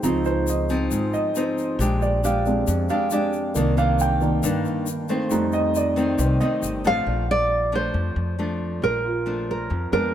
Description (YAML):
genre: bossa nova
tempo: 137 BPM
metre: 4/4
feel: straight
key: Bb major from 7.1 s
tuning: A4 = 440 Hz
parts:
  - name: nylon-string guitar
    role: accompaniment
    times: 0.0-10.1 s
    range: F2 to G4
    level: -26 LUFS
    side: left 2 dB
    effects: none
  - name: warm baby grand piano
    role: accompaniment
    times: 0.0-10.1 s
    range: Eb3 to G5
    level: -24 LUFS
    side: right 2 dB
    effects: none
  - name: upright bass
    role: bass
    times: 0.0-10.1 s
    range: G1 to G2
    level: -25 LUFS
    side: equal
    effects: none
  - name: tube shaker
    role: percussion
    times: 0.0-7.1 s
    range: none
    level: -35 LUFS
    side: left 8 dB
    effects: none
  - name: nylon-string guitar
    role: melody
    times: 6.9-10.1 s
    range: Bb4 to F5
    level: -23 LUFS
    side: right 1 dB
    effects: none
room: light reverb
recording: none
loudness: -20 LUFS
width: side -10 dB against mid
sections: 0.0-7.1 A section; 7.1-10.1 B section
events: grand piano solo 0.0-7.1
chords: 0.0 Dbmaj9; 1.8 Bb13; 3.6 Cm9; 5.3 F7; 7.1 Bbmaj7